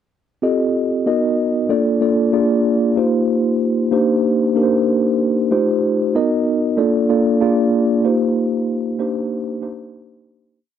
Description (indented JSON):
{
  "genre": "soul",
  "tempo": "94 BPM",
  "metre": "4/4",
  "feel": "swing 54% on 16ths",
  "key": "unclear",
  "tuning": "A4 = 436 Hz",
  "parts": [
    { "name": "mellow tine electric piano", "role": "solo", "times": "0.4-10.6 s", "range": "A3 to Eb5", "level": "-15 LUFS", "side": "equal", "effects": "medium stereo tremolo" }
  ],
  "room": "light reverb",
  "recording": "dry, close 1970s-style studio recording",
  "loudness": "-15 LUFS",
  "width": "side -9 dB against mid",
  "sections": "0.4-10.6 pre-chorus",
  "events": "fade-out 8.0-10.6",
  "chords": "0.4 F9; 1.1 Bmaj7; 1.7 Bbmaj7; 2.3 Bb7; 3.0 Eb69; 3.9 Cm9; 5.5 F9; 6.1 Bmaj7; 6.8 Bbmaj7; 7.4 Bb7; 8.0 Eb69; 9.0 Cm9"
}